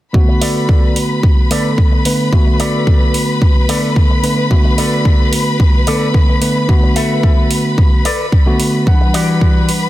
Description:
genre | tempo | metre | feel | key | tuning
nu-disco, nu disco | 110 BPM | 4/4 | straight | B minor | A4 = 442 Hz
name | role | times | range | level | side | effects
tine electric piano | accompaniment | 0.1-9.9 s | D3 to F#5 | -16 LUFS | right 1 dB | low-pass filter, analog delay
warm studio string section | sustained chords | 0.1-9.9 s | B4 to B5 | -21 LUFS | left 2 dB | sidechain pumping
electronic kick drum | drums | 0.1-9.5 s | none | -11 LUFS | equal | studio reverb
electric guitar with an envelope filter | riff | 0.3-9.7 s | E3 to E5 | -22 LUFS | left 3 dB | wide subtle chorus, low-pass filter, analog delay
electronic hi-hat | drums | 0.4-9.8 s | none | -22 LUFS | right 3 dB | studio reverb
room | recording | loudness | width
little or no reverb | dense, heavily limited modern master | -10 LUFS | side -15 dB against mid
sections
0.1-9.9 A section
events
filter sweep on tine electric piano 0.1-9.9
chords
0.1 Bm7; 8.9 Em9

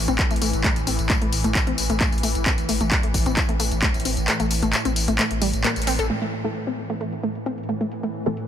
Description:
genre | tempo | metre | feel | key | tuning
driving peak-time techno | 132 BPM | 4/4 | straight | unclear | A4 = 439 Hz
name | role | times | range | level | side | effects
saturated sub bass | bass | 0.0-6.1 s | A1 | -26 LUFS | equal | tube saturation, sidechain pumping, low-pass filter
swarming drone | drone | 0.0-8.5 s | A2 to E3 | -29 LUFS | equal | built-in reverb, sidechain pumping
analog pluck | riff | 0.1-8.3 s | G3 to A4 | -26 LUFS | left 1 dB | chorus, sidechain pumping, tape echo
punchy analog drum machine | drums | 0.1-8.5 s | crash cymbal, handclaps, hi-hat, tambourine | -24 LUFS | left 1 dB | overdrive, low-pass filter on hats, low-pass filter on snare, low-pass filter on perc, low-pass filter on cymbals
electronic kick drum | drums | 0.2-3.9 s | none | -23 LUFS | equal | overdrive
filtered dub chord stab | stabs | 6.4-8.4 s | E3 to A4 | -28 LUFS | equal | phaser, analog chorus, sidechain pumping, ping-pong delay
room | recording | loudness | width
light reverb, digital ambience | none | -20 LUFS | side -9 dB against mid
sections
0.0-6.1 A section; 6.1-8.5 B section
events
filter sweep on synth arpeggio sound 0.0-6.1, 6.1-8.5; kick drops out 4.3-6.1; band accent 5.6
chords
0.0 A5

